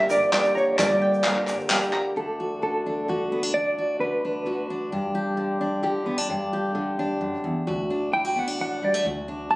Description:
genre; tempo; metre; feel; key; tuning
indie folk with a building arrangement; 131 BPM; 3/4; straight; D major; A4 = 440 Hz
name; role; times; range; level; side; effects
mellow electric guitar; melody; 0.0-4.7, 8.1-9.6 s; A4 to A5; -23 LUFS; right 1 dB; tremolo
picked steel-string acoustic guitar; accompaniment; 0.0-2.2 s; G2 to G4; -30 LUFS; left 1 dB; none
pedal harmonium; sustained chords; 0.0-2.1 s; D3 to G4; -30 LUFS; equal; none
bluegrass banjo; arpeggios; 0.0-2.2 s; Bb4 to Bb5; -33 LUFS; right 2 dB; none
upright bass; bass; 0.0-1.5, 7.7-9.6 s; G1 to D2; -35 LUFS; equal; none
egg shaker; percussion; 0.1-1.9 s; none; -42 LUFS; right 1 dB; none
group handclap; percussion; 0.3-2.0 s; none; -24 LUFS; left 1 dB; none
fingerpicked steel-string acoustic guitar; accompaniment; 2.2-9.6 s; D2 to G4; -26 LUFS; equal; none
room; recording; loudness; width
light reverb; recorded on a phone in the room, club reverb; -22 LUFS; side -20 dB against mid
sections
0.0-2.2 A section; 2.2-7.7 B section; 7.7-9.6 C section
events
build-up 7.7-9.6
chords
0.0 Gm; 2.2 D; 4.9 G5; 7.7 D

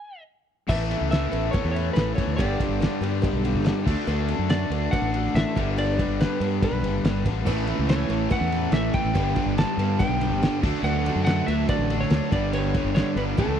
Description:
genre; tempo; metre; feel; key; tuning
classic rock; 142 BPM; 4/4; straight; unclear; A4 = 440 Hz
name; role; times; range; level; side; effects
electric slide guitar; melody; 0.0-13.6 s; A4 to A5; -30 LUFS; equal; none
picked swing-style acoustic guitar; accompaniment; 0.7-13.6 s; G2 to B4; -37 LUFS; right 3 dB; none
crunchy overdriven guitar; riff; 0.7-13.6 s; G2 to D4; -28 LUFS; left 1 dB; none
overdriven electric guitar; riff; 0.7-13.6 s; G2 to D4; -32 LUFS; left 12 dB; none
fuzz fingered electric bass; bass; 0.7-13.6 s; F#1 to G2; -27 LUFS; equal; overdrive
cloth-damped thuddy drum kit; drums; 0.7-13.5 s; crash cymbal, kick drum, ride cymbal, snare drum; -27 LUFS; equal; none
cowbell; percussion; 0.7-13.5 s; none; -39 LUFS; equal; none
sludgy distorted guitar; riff; 7.4-13.6 s; G2 to E4; -30 LUFS; right 13 dB; overdrive
room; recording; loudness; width
small room ambience; dry, close 1970s-style studio recording; -21 LUFS; side -8 dB against mid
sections
0.7-13.6 A section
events
stop 0.0-0.7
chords
0.0 N.C.; 0.7 Aadd9; 2.4 G; 3.9 D; 5.6 G; 7.5 Aadd9; 9.2 G; 10.6 D; 12.3 G

